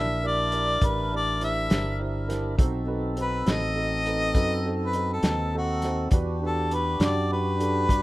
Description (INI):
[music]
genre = slow blues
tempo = 68 BPM (dotted quarters)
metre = 12/8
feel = straight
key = unclear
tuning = A4 = 440 Hz
[part]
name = mellow harmonica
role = melody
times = 0.0-8.0 s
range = F#4 to E5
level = -27 LUFS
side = left 1 dB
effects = plate reverb
[part]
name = dark concert grand piano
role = accompaniment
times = 0.0-8.0 s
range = D4 to D#5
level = -33 LUFS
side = right 3 dB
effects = plate reverb
[part]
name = tonewheel organ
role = sustained chords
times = 0.0-8.0 s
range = C4 to Bb4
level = -31 LUFS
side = equal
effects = slow rotary speaker, plate reverb
[part]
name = fingered electric bass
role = bass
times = 0.0-8.0 s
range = G1 to G2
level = -29 LUFS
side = equal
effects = none
[part]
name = warm soul drum kit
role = drums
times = 0.5-8.0 s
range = hi-hat, kick drum, snare drum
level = -24 LUFS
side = equal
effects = none
[sound]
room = moderate small room reverb, RT60 0.5 s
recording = rough home demo mix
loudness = -23 LUFS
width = side -18 dB against mid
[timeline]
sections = 0.0-8.0 A section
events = none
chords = 0.0 C7; 2.6 B7b9; 6.1 Em7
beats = 0.82 1.70 | 2.58 3.47 4.35 5.24 | 6.12 7.01 7.89